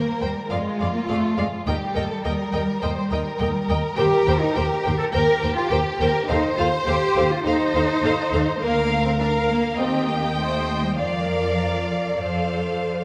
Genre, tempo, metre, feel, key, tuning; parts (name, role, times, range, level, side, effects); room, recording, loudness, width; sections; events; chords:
quick classical-period movement for string orchestra; 103 BPM; 4/4; straight; Bb major from 4.0 s; A4 = 440 Hz
warm studio violin section; second line; 0.0-13.0 s; F4 to D5; -29 LUFS; equal
warm studio cello section; bass; 0.0-13.0 s; F3 to Bb4; -26 LUFS; equal
rich studio violin section; melody; 0.2-13.0 s; F5 to G5; -33 LUFS; equal
warm studio viola section; accompaniment; 0.2-13.0 s; Ab4 to F5; -30 LUFS; equal
warm studio double bass section; bass; 0.2-13.0 s; D2 to F2; -29 LUFS; equal
wet concert hall reverb, RT60 2.4 s; -22 LUFS; mono
0.0-13.0 A section
0.0 Eb6; 0.5 Ddim/F; 1.7 Eb; 4.0 Cm7/Eb; 6.3 F7/Eb; 8.6 Bb/D; 9.8 Cm/Eb; 11.0 Bb/F; 12.2 F